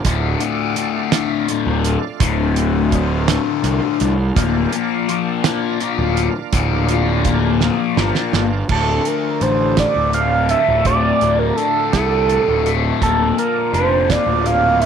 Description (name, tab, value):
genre	psychedelic rock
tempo	56 BPM (dotted quarters)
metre	6/8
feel	straight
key	D minor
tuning	A4 = 441 Hz
part	bright tonewheel organ	sustained chords	0.0-14.9 s	F3 to A5	-29 LUFS	right 13 dB	slow rotary speaker, overdrive, chorus vibrato
part	damped 70s drum kit	drums	0.0-14.9 s	crash cymbal, hi-hat, kick drum, snare drum	-20 LUFS	right 5 dB	none
part	fuzz guitar	riff	0.1-14.9 s	D2 to F4	-20 LUFS	left 13 dB	distortion, phaser
part	fuzz picked electric bass	bass	0.1-14.8 s	D1 to C2	-19 LUFS	right 2 dB	overdrive
part	overdriven synth lead	melody	8.7-14.9 s	A4 to F5	-17 LUFS	right 4 dB	chorus, slapback echo
room	light reverb, small room ambience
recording	1960s-style stereo with parts hard left and right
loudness	-15 LUFS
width	side -7 dB against mid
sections	0.0-8.7 A section; 8.7-14.9 B section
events	drum fill 7.6-8.7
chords	0.1 Dm; 4.4 Bb/D; 8.7 Dm; 13.0 Bb/D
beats	| 0.05 1.13 | 2.21 3.29 | 4.37 5.45 | 6.53 7.61 | 8.69 9.77 | 10.85 11.93 | 13.01 14.09